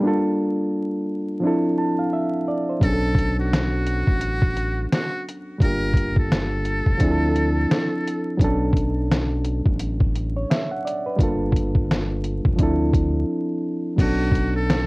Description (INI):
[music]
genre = lo-fi hip hop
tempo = 86 BPM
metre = 4/4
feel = swing 60% on 16ths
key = unclear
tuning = A4 = 443 Hz
[part]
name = barky reed electric piano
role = accompaniment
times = 0.0-14.9 s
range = F3 to A5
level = -23 LUFS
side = equal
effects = none
[part]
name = trumpet with metal mute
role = melody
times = 2.8-8.4, 14.0-14.9 s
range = F#4 to Bb4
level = -27 LUFS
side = equal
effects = plate reverb
[part]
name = round analog bass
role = bass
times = 2.8-14.9 s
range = F1 to D2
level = -25 LUFS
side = equal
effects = tube saturation
[part]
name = trip hop sampler-style drum kit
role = drums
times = 2.8-14.9 s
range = crash cymbal, hi-hat, kick drum, snare drum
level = -21 LUFS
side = equal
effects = none
[sound]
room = moderate small room reverb, RT60 0.5 s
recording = worn, warbling old tape, cassette tape, vinyl crackle, warbly pitch drift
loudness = -19 LUFS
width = side -24 dB against mid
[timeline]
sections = 0.0-14.0 A section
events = break 13.3-14.0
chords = 0.0 Gm9; 1.4 Dm9; 2.8 Bm9; 5.6 Gm9; 7.0 Dm9; 8.4 Bm9; 11.2 Gm9; 12.6 Dm9; 14.0 Bm9